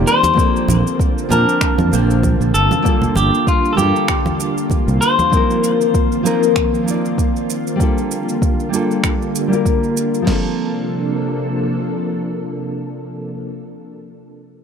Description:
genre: sunset chillout.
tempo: 97 BPM.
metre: 4/4.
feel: swing 56% on 16ths.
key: Bb major.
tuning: A4 = 440 Hz.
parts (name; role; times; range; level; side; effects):
clean electric guitar; melody; 0.0-5.9 s; F4 to C5; -18 LUFS; left 2 dB; ping-pong delay.
nylon-string guitar; accompaniment; 0.0-14.1 s; F3 to A5; -20 LUFS; moving between left 4 dB and right 3 dB; auto-pan, low-pass filter, digital delay.
soft string machine; sustained chords; 0.0-13.5 s; C3 to A5; -22 LUFS; equal; ensemble chorus.
overdriven fingered electric bass; bass; 0.0-5.0 s; G1 to Bb2; -16 LUFS; right 1 dB; none.
deep house drum kit; drums; 0.1-10.2 s; finger snaps, hi-hat, shaker; -25 LUFS; right 4 dB; overdrive.
congas; percussion; 0.2-5.3 s; none; -24 LUFS; right 2 dB; none.
deep house drum kit; drums; 0.4-10.4 s; crash cymbal, kick drum, snare drum; -18 LUFS; right 1 dB; overdrive.
room: moderate plate reverb, RT60 2.6 s.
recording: none.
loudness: -14 LUFS.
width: side -7 dB against mid.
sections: 0.4-10.3 A section; 10.3-12.7 B section.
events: none.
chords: 0.4 Bbmaj9; 2.5 Gm9; 5.3 F7sus4; 7.8 Gm9; 10.3 Bbmaj9.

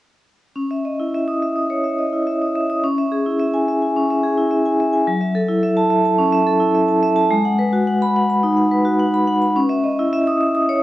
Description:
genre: classical, contemporary piece for solo vibraphone.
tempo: 107 BPM.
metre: 4/4.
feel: rubato.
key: C# minor.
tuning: A4 = 440 Hz.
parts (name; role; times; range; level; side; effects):
vibraphone with medium hard mallets; solo; 0.6-10.8 s; F#3 to D#6; -16 LUFS; equal; none.
room: moderate recital hall reverb, RT60 1.5 s.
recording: worn, warbling old tape, cassette tape, warbly pitch drift, nothing above 10.5 kHz.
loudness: -16 LUFS.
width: side -15 dB against mid.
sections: 0.6-10.8 A section.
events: none.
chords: 0.6 C#madd9; 2.8 E/C#; 5.1 F#m7; 7.3 G#m7; 9.6 C#madd9.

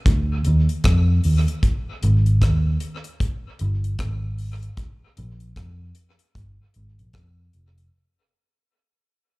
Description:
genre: lovers rock reggae.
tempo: 76 BPM.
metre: 4/4.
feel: swing 60% on 16ths.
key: unclear.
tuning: A4 = 440 Hz.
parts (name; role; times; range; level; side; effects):
vintage muted fingered electric bass; bass; 0.1-7.9 s; F1 to F2; -19 LUFS; equal; none.
deep reggae drum kit; drums; 0.1-7.9 s; hi-hat, kick drum, rim click; -22 LUFS; equal; dub echo.
room: little or no reverb.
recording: live gig heard through the venue's PA, club reverb.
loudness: -18 LUFS.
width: side -24 dB against mid.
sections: 0.0-7.9 A section.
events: fade-out 0.0-7.9.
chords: none.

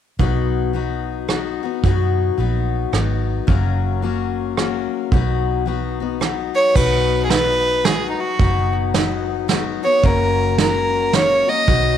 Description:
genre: honky-tonk and classic country.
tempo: 110 BPM.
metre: 3/4.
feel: swing 62% on 8ths.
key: B major.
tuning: A4 = 440 Hz.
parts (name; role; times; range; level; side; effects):
picked steel-string acoustic guitar; accompaniment; 0.2-12.0 s; F#2 to F#4; -22 LUFS; left 12 dB; none.
vintage muted fingered electric bass; bass; 0.2-12.0 s; F#1 to F#2; -22 LUFS; right 1 dB; none.
soft brush drum kit; drums; 0.2-11.8 s; crash cymbal, hi-hat, kick drum, rim click, snare drum; -20 LUFS; right 4 dB; none.
clear fiddle; melody; 6.6-12.0 s; D#4 to D#5; -17 LUFS; right 1 dB; none.
room: light reverb, small room ambience.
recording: 1960s-style stereo.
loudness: -16 LUFS.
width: side -9 dB against mid.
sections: 0.2-6.8 A section; 6.8-12.0 B section.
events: none.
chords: 0.2 B; 3.5 F#; 5.1 B; 10.0 F#.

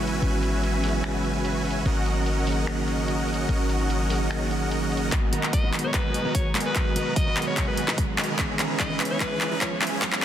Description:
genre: future bass.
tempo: 147 BPM.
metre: 4/4.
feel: half-time.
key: G# minor.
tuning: A4 = 439 Hz.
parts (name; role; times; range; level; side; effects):
mellow tine electric piano; accompaniment; 0.0-10.2 s; D#3 to B4; -30 LUFS; right 2 dB; medium stereo tremolo, sidechain pumping, tape echo.
airy breathy pad; sustained chords; 0.0-10.2 s; B2 to A#5; -36 LUFS; left 2 dB; none.
supersaw chords; riff; 0.0-10.2 s; B3 to B5; -29 LUFS; right 1 dB; lush chorus, sidechain pumping, low-pass filter, tape echo.
warm 808-style bass; bass; 0.0-10.2 s; G#1 to G#2; -29 LUFS; equal; tube saturation, sidechain pumping, high-pass filter.
big-room dance drum kit; drums; 0.0-10.2 s; finger snaps, handclaps, hi-hat; -28 LUFS; left 1 dB; overdrive, high-pass filter on hats, low-pass filter on hats, soft clipping on snare, high-pass filter on snare, low-pass filter on snare.
electronic kick drum; drums; 5.1-10.1 s; none; -26 LUFS; equal; overdrive.
riser; sound effects; 6.9-10.2 s; none; -37 LUFS; right 1 dB; none.
raspy alto saxophone; melody; 5.5-10.2 s; B4 to D#5; -31 LUFS; left 1 dB; sidechain pumping, digital delay.
room: moderate lush hall reverb, RT60 1.9 s.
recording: dense, heavily limited modern master, high-pass filter.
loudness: -22 LUFS.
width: side -10 dB against mid.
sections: 0.0-5.1 A section; 5.1-10.2 B section.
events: build-up 5.1-10.2; drum fill 5.1-10.2; filter sweep 5.1-10.2; riser 6.9-10.2.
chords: 0.0 E69/G#; 1.9 D#m7/G#; 5.1 G#m9; 8.4 C#m7/G#.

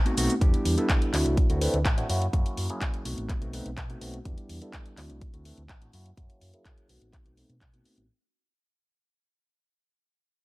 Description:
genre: filtered disco house.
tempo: 125 BPM.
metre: 4/4.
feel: straight.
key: unclear.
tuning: A4 = 440 Hz.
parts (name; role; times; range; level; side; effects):
overdriven tine electric piano; accompaniment; 0.1-8.0 s; F#3 to B4; -30 LUFS; equal; phaser, sidechain pumping, low-pass filter.
house drum kit; drums; 0.1-8.1 s; handclaps, hi-hat, shaker; -33 LUFS; equal; sidechain pumping on hats, small room ambience, sidechain pumping on perc.
overdriven fingered electric bass; bass; 0.2-8.1 s; A1 to B2; -30 LUFS; equal; sidechain pumping, low-pass filter.
electronic kick drum; drums; 0.4-7.7 s; none; -26 LUFS; equal; small room ambience.
room: digital ambience.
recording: none.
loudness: -24 LUFS.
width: side -21 dB against mid.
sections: 0.0-8.1 A section.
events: fade-out 0.0-8.1; filter sweep 0.0-8.1.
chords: 0.4 Em7; 1.1 D9; 2.1 F#7; 3.1 B7b9; 4.3 Em7; 5.0 D9; 5.9 F#7; 6.9 B7b9.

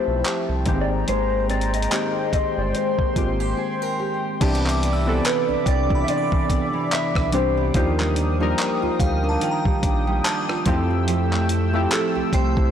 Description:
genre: contemporary R&B.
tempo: 72 BPM.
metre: 4/4.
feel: swing 58% on 16ths.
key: C major.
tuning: A4 = 440 Hz.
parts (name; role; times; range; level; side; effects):
mellow electric guitar; melody; 0.0-12.7 s; A4 to E5; -26 LUFS; left 2 dB; phaser.
warm analog keys; accompaniment; 0.0-12.7 s; Eb3 to Bb4; -27 LUFS; left 2 dB; chorus.
chorused pulse-width pad; sustained chords; 0.0-12.7 s; Ab3 to E6; -28 LUFS; left 1 dB; none.
fingerpicked steel-string acoustic guitar; arpeggios; 0.0-12.7 s; C3 to Bb4; -28 LUFS; right 6 dB; tape echo.
round analog bass; bass; 0.1-12.7 s; G1 to F2; -24 LUFS; equal; none.
dusty soul sampler-style drum kit; drums; 0.2-12.7 s; crash cymbal, handclaps, hi-hat, kick drum, rim click; -24 LUFS; equal; none.
glassy synth bell; texture; 4.4-12.7 s; F5 to E6; -31 LUFS; left 1 dB; chorus, tape echo.
room: light reverb, digital ambience.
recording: blown-out, overdriven recording, overdrive.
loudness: -19 LUFS.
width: side -9 dB against mid.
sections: 0.0-4.4 A section; 4.4-12.7 B section.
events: break 3.6-4.4.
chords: 0.0 Fmaj9; 0.7 Abmaj9; 4.4 Cmaj9; 7.7 Ebmaj9; 10.7 Fmaj9.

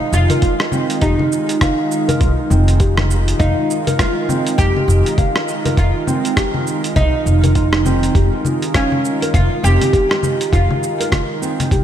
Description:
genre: organic downtempo.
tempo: 101 BPM.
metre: 4/4.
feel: swing 60% on 16ths.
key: F minor.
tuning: A4 = 439 Hz.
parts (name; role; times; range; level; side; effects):
oud; melody; 0.0-11.7 s; Db4 to G4; -21 LUFS; right 1 dB; ping-pong delay.
warm analog pad; sustained chords; 0.0-11.8 s; Eb3 to Bb4; -23 LUFS; right 2 dB; lush chorus, sidechain pumping.
nylon-string guitar; arpeggios; 0.0-11.8 s; C4 to F5; -22 LUFS; right 1 dB; vintage 12-bit sampler grit, ping-pong delay.
upright bass; bass; 0.1-11.8 s; F1 to C2; -15 LUFS; equal; sidechain pumping.
dusty soul sampler-style drum kit; drums; 0.1-11.8 s; congas, hi-hat, rim click, shaker; -22 LUFS; left 2 dB; overdrive.
electronic kick drum; drums; 0.4-11.8 s; none; -17 LUFS; equal; overdrive.
room: moderate lush hall reverb, RT60 2.9 s.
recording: dreamy mix soaked in reverb.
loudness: -13 LUFS.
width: side -10 dB against mid.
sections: 0.0-11.8 A section.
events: none.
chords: 0.0 Fm7.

